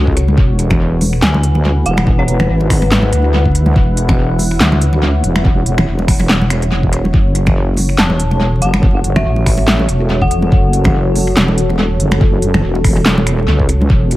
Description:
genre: deep dubstep.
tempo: 142 BPM.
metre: 4/4.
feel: swing 56% on 16ths, half-time.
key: F# minor.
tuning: A4 = 439 Hz.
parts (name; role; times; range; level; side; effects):
deep dark ambient pad; sustained chords; 0.0-14.2 s; E4 to F#5; -21 LUFS; left 1 dB; chorus, built-in reverb.
deep soft wobble bass; bass; 0.0-14.2 s; E1 to D2; -14 LUFS; equal; chorus.
electronic kick drum; drums; 0.1-14.0 s; none; -13 LUFS; equal; none.
deep house drum kit; drums; 0.2-14.2 s; finger snaps, handclaps, hi-hat, snare drum; -18 LUFS; equal; tape echo.
congas; percussion; 0.3-13.9 s; none; -19 LUFS; equal; dub echo.
dark detuned synth bell; melody; 1.2-2.6, 8.0-10.8 s; C#5 to A5; -23 LUFS; left 1 dB; chorus, tremolo, dub echo.
room: light reverb.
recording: echo-heavy mix, vinyl crackle.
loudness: -10 LUFS.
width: side -16 dB against mid.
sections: 0.0-14.2 A section.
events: none.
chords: 0.4 E5; 7.1 F#m.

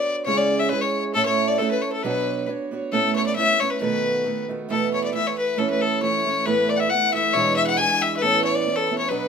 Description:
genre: celtic folk, Celtic polka.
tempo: 136 BPM.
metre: 2/4.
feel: straight.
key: unclear.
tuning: A4 = 440 Hz.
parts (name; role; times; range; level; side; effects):
clear fiddle; melody; 0.0-9.3 s; A4 to G#5; -22 LUFS; left 4 dB; none.
breathy mellow concert flute; second line; 0.0-2.5, 6.5-9.3 s; A4 to G#5; -29 LUFS; left 5 dB; none.
picked old ladder-braced acoustic guitar; accompaniment; 0.0-9.3 s; E2 to C#5; -24 LUFS; right 5 dB; none.
room: moderate studio reverb, RT60 0.6 s.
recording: minimal, uncompressed stereo recording.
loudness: -19 LUFS.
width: side -6 dB against mid.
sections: 0.0-2.9 A section; 2.9-9.3 B section.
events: none.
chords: 0.3 C#m; 1.1 A; 2.0 Bmadd9; 2.9 Aadd9; 3.8 B7; 4.7 Esus4/B; 5.6 A; 6.5 Asus2; 7.3 E7; 8.2 Aadd9.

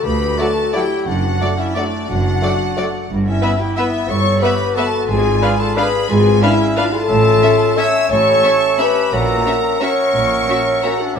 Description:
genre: classical, orchestral ballroom waltz.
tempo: 178 BPM.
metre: 3/4.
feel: uneven beats, rubato.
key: D major.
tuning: A4 = 437 Hz.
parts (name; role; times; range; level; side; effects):
clear clarinet; second line; 0.0-11.2 s; A3 to C#5; -25 LUFS; left 1 dB; none.
rich studio violin section; second line; 0.0-11.2 s; D5 to E6; -23 LUFS; left 2 dB; none.
warm French horn section; sustained chords; 0.0-11.2 s; D4 to E5; -17 LUFS; left 2 dB; none.
rich studio double bass section; bass; 0.1-11.2 s; F#1 to D2; -22 LUFS; right 4 dB; none.
warm studio cello section; bass; 0.1-11.2 s; D2 to A#2; -23 LUFS; right 2 dB; none.
rich studio violin section; melody; 0.4-10.9 s; D5 to E#5; -27 LUFS; left 4 dB; none.
clear oboe; second line; 0.4-11.2 s; D5 to E#5; -27 LUFS; equal; none.
silver concert flute; second line; 0.4-11.2 s; F#5 to B5; -27 LUFS; left 1 dB; none.
warm bassoon; accompaniment; 0.4-11.2 s; A3 to D4; -26 LUFS; right 3 dB; none.
warm studio viola section; accompaniment; 0.4-10.9 s; F#3 to B4; -26 LUFS; equal; none.
room: wet scoring stage reverb, RT60 1.5 s.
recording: none.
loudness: -13 LUFS.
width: side -7 dB against mid.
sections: 0.0-11.2 A section.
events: none.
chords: 0.0 D; 1.1 D/F#; 3.1 Em/G; 5.1 G#dim7; 7.1 A; 9.1 F#7/A#.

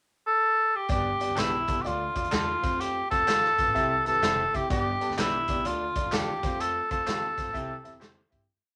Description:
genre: uptempo 1960s-style soul.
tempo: 126 BPM.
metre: 4/4.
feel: swing 65% on 8ths.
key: G mixolydian.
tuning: A4 = 440 Hz.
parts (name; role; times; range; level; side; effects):
warm cor anglais; melody; 0.3-8.3 s; E4 to A4; -28 LUFS; equal; none.
warm concert grand piano; accompaniment; 0.9-8.4 s; G2 to E5; -37 LUFS; equal; none.
upright bass; bass; 0.9-8.4 s; F1 to A2; -41 LUFS; equal; none.
swinging big-band drum kit; drums; 0.9-8.4 s; hi-hat, kick drum, snare drum; -34 LUFS; equal; none.
tambourine and handclaps; percussion; 0.9-8.4 s; none; -45 LUFS; equal; none.
direct-recorded clean electric guitar; stabs; 1.4-8.2 s; C4 to C5; -42 LUFS; equal; none.
room: wet small room ambience, RT60 0.5 s.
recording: none.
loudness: -27 LUFS.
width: mono.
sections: 0.0-0.9 pickup bar; 0.9-8.5 verse.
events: fade-out 6.6-8.5.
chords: 0.0 N.C.; 0.9 G; 1.8 Dm; 2.6 F; 3.8 C; 4.7 G; 5.7 Dm; 6.4 F; 7.5 C.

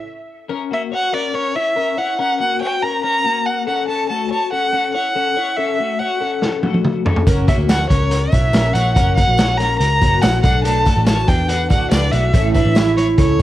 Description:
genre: jangly indie pop.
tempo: 142 BPM.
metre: 4/4.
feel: straight.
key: unclear.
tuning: A4 = 440 Hz.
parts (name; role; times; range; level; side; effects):
rich violin; melody; 0.0-13.4 s; C#5 to A#5; -19 LUFS; equal; cassette tape.
picked twelve-string acoustic guitar; accompaniment; 0.0-0.2, 7.3-13.4 s; A2 to F#4; -23 LUFS; right 6 dB; cassette tape.
twelve-string electric guitar; arpeggios; 0.5-13.4 s; A3 to D5; -23 LUFS; left 8 dB; harmonic tremolo, cassette tape.
vintage drum kit; drums; 6.4-13.4 s; hi-hat, kick drum, snare drum, toms; -17 LUFS; equal; cassette tape.
vintage muted picked electric bass; bass; 7.3-13.4 s; F#1 to E2; -18 LUFS; equal; none.
tambourine; percussion; 7.3-13.4 s; none; -40 LUFS; left 8 dB; none.
room: light reverb, small room ambience.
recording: home recording on cassette.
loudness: -14 LUFS.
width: side -14 dB against mid.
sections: 0.5-13.4 A section.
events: stop 0.0-0.5; drum fill 6.4-7.3.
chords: 0.5 F#; 3.7 A6; 7.3 F#; 10.4 Bm7; 12.3 A.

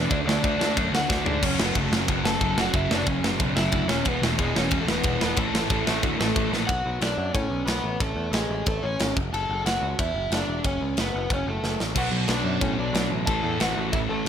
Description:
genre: punk rock.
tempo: 182 BPM.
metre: 4/4.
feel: straight.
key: A major.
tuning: A4 = 438 Hz.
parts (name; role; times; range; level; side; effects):
overdriven semi-hollow guitar; melody; 0.0-14.3 s; G#3 to A5; -28 LUFS; equal; tape echo.
sludgy distorted guitar; riff; 0.0-6.7, 11.9-14.3 s; E2 to D4; -26 LUFS; equal; overdrive.
picked electric bass; bass; 0.0-14.3 s; E1 to A2; -30 LUFS; equal; none.
tight metal drum kit; drums; 0.1-14.3 s; crash cymbal, kick drum, ride cymbal, snare drum, splash cymbal, toms; -26 LUFS; equal; none.
room: little or no reverb.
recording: none.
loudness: -22 LUFS.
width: side -8 dB against mid.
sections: 0.0-6.7 A section; 6.7-14.3 B section.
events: drum fill 1.1-1.4, 6.5, 11.6-12.0; half time 6.7-14.3.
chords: 0.1 D; 1.4 F#m; 3.9 E; 5.4 A5; 6.7 Bm; 8.0 A; 9.2 F#m; 12.0 Bm; 13.3 A5.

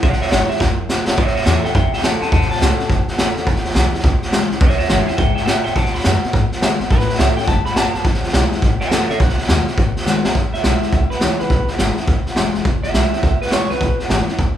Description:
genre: rockabilly.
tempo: 209 BPM.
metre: 4/4.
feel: swing 63% on 8ths.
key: E mixolydian.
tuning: A4 = 440 Hz.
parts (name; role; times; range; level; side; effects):
electric guitar through a small old amp; melody; 0.0-14.0 s; E4 to B5; -23 LUFS; right 2 dB; tape echo.
picked steel-string acoustic guitar; accompaniment; 0.0-14.6 s; E2 to F#4; -24 LUFS; left 3 dB; none.
upright bass; bass; 0.0-14.5 s; E1 to A2; -21 LUFS; equal; none.
raw garage drum kit; drums; 0.0-14.5 s; hi-hat, kick drum, snare drum; -17 LUFS; equal; none.
room: light reverb.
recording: band playing live in one room.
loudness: -14 LUFS.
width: side -11 dB against mid.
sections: 0.0-10.4 A section; 10.4-14.6 B section.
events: clean electric guitar solo 0.0-10.4; drum fill 0.6-1.2, 10.1.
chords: 0.0 E6; 1.2 A6; 3.5 E6; 5.8 B6; 6.9 A6; 8.1 E6; 8.6 A6; 9.2 B6; 10.4 E6.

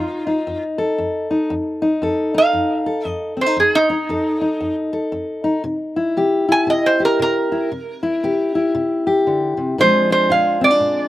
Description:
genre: acoustic country blues, solo or duo.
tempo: 116 BPM.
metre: 4/4.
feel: swing 61% on 8ths.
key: F mixolydian.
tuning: A4 = 440 Hz.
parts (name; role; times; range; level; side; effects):
lap resonator guitar; melody; 0.0-11.1 s; Eb4 to Ab5; -16 LUFS; right 2 dB; none.
fingerpicked steel-string acoustic guitar; accompaniment; 0.0-11.1 s; F2 to A4; -18 LUFS; left 2 dB; none.
room: little or no reverb.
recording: recorded outdoors, with no room sound.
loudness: -16 LUFS.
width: side -15 dB against mid.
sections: 0.0-11.1 A section.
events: none.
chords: 0.0 F7; 5.6 C7; 9.8 Bb7.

